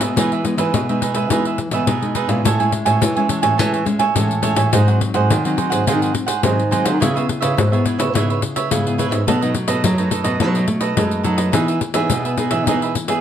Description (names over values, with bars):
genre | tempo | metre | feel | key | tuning
samba and choro | 106 BPM | 4/4 | straight | E major | A4 = 440 Hz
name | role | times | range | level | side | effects
cavaquinho | accompaniment | 0.0-13.2 s | D#4 to G#5 | -21 LUFS | right 7 dB | none
nylon-string guitar | accompaniment | 0.0-13.2 s | F#2 to G#4 | -22 LUFS | left 2 dB | none
nylon-string guitar | bass | 0.0-12.9 s | G#2 to A3 | -20 LUFS | right 1 dB | none
pandeiro | percussion | 0.0-13.2 s | none | -22 LUFS | left 4 dB | none
room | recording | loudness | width
moderate studio reverb, RT60 0.7 s | dark, warm production | -15 LUFS | side -9 dB against mid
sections
0.0-2.5 A section; 2.5-13.2 B section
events
none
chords
0.0 Emaj7; 2.5 Amaj7; 4.7 G#7; 7.0 C#m7; 9.3 B7; 11.5 Emaj7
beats
| 0.17 0.74 1.31 1.88 | 2.45 3.02 3.59 4.16 | 4.73 5.30 5.87 6.43 | 7.00 7.57 8.14 8.71 | 9.27 9.84 10.41 10.97 | 11.54 12.11 12.67